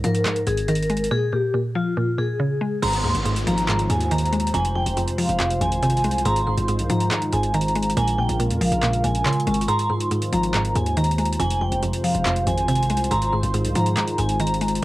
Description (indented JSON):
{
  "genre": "hip hop, trap",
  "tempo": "140 BPM",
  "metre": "4/4",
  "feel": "half-time",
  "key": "Ab major",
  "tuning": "A4 = 440 Hz",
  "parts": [
    { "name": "vibraphone with medium hard mallets", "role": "melody", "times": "0.0-14.8 s", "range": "F4 to C6", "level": "-25 LUFS", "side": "equal", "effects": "cassette tape" },
    { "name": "mallet-like synth pluck", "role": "accompaniment", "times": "0.0-14.8 s", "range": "F2 to Ab3", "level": "-23 LUFS", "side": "equal", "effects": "chorus, cassette tape" },
    { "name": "distorted 808-style bass", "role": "bass", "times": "0.0-14.8 s", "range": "F1 to Ab2", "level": "-26 LUFS", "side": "equal", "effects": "distortion" },
    { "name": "trap drum kit", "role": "drums", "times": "0.0-14.8 s", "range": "crash cymbal, handclaps, hi-hat", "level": "-29 LUFS", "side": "equal", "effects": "cassette tape" },
    { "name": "dark detuned synth bell", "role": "second line", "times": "2.8-13.5 s", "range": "Bb5 to Db6", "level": "-32 LUFS", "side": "right 4 dB", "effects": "chorus, cassette tape, plate reverb, analog delay" },
    { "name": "dark analog pad", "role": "sustained chords", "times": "2.8-14.8 s", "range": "C3 to C5", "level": "-28 LUFS", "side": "equal", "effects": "chorus, cassette tape" },
    { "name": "downlifter", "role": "sound effects", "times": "2.8-6.3 s", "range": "none", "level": "-33 LUFS", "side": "equal", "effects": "none" }
  ],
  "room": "moderate booth ambience, RT60 0.2 s",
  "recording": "home recording on cassette",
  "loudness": "-19 LUFS",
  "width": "side -17 dB against mid",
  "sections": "0.0-2.8 A section; 2.8-14.8 B section",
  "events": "kick muted 9.7-10.1",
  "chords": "0.0 Ab5; 1.1 Bbm7; 2.8 Ab6; 4.5 Fm; 6.3 Ab6; 8.0 Bbm7; 9.7 Ab6; 11.4 Fm; 13.1 Ab6"
}